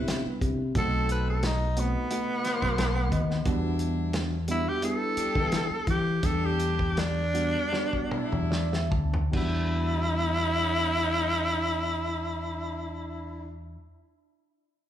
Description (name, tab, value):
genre	straight-eighth soul blues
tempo	71-89 BPM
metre	4/4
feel	swing 53% on 16ths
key	E minor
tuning	A4 = 441 Hz
part	reed electric piano	accompaniment	0.0-13.8 s	C3 to A5	-34 LUFS	right 3 dB	phaser, slapback echo
part	warm horn section	sustained chords	0.0-13.5 s	B3 to C5	-39 LUFS	left 3 dB	none
part	fingered electric bass	bass	0.0-13.8 s	B1 to E3	-29 LUFS	left 1 dB	none
part	warm soul drum kit	drums	0.1-9.5 s	crash cymbal, hi-hat, kick drum, snare drum, toms	-32 LUFS	equal	none
part	raspy tenor saxophone	melody	0.8-13.5 s	B3 to B4	-29 LUFS	equal	slapback echo
room	light reverb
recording	live gig heard through the venue's PA, club reverb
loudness	-25 LUFS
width	side -10 dB against mid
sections	0.0-9.3 A section; 9.3-12.7 B section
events	reed electric piano fill 2.4-3.5, 8.1-9.3; slowing down 3.5-9.3; drum fill 7.7-9.3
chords	0.0 Cmaj7; 0.8 B7b9; 3.5 Em7